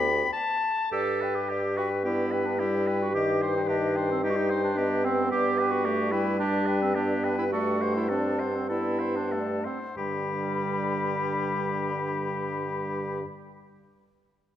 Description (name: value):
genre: quick classical-period movement for wind quintet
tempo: 92-112 BPM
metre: 4/4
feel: rubato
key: G major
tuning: A4 = 443 Hz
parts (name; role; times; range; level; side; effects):
- mellow hollow silver concert flute; melody; 0.0-13.2 s; D5 to B5; -34 LUFS; left 7 dB; none
- clear oboe; second line; 0.0-13.2 s; G4 to B5; -32 LUFS; left 4 dB; none
- bright clarinet; accompaniment; 0.0-13.2 s; G3 to A4; -31 LUFS; right 4 dB; none
- mellow bassoon; bass; 0.0-13.2 s; D2 to G2; -29 LUFS; equal; none
- warm French horn; accompaniment; 2.0-13.2 s; D3 to C4; -33 LUFS; equal; none
room: moderate scoring stage reverb, RT60 2.0 s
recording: none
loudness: -25 LUFS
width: side -11 dB against mid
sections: 0.9-10.0 A section; 10.0-12.5 B section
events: slowing down 4.2-10.0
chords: 0.0 G; 3.1 Cm/G; 5.3 G